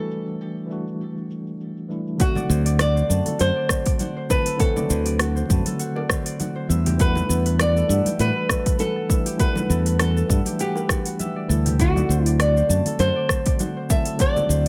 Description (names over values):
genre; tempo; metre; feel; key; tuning
sunset chillout; 100 BPM; 4/4; swing 55% on 16ths; unclear; A4 = 443 Hz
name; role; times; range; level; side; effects
flamenco guitar; melody; 0.0-14.7 s; F#4 to E5; -27 LUFS; equal; tape echo
tine electric piano; accompaniment; 0.0-14.7 s; D3 to F#5; -30 LUFS; equal; none
smooth R&B drum kit; drums; 0.1-14.7 s; hi-hat, rim click, shaker; -29 LUFS; equal; low-pass filter on perc, low-pass filter on hats, low-pass filter on snare
concert harp; arpeggios; 2.2-14.7 s; F#4 to A5; -36 LUFS; equal; digital delay
electronic kick drum; drums; 2.2-14.3 s; none; -24 LUFS; equal; overdrive
congas and bongos; percussion; 2.4-14.5 s; none; -34 LUFS; equal; none
modern bright fingered electric bass; bass; 2.5-14.7 s; D2 to A2; -23 LUFS; equal; none
room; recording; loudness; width
light reverb; none; -22 LUFS; mono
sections
0.0-2.2 A section; 2.2-14.7 B section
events
none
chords
0.0 Em11; 2.2 D7; 6.7 Em11; 11.8 D7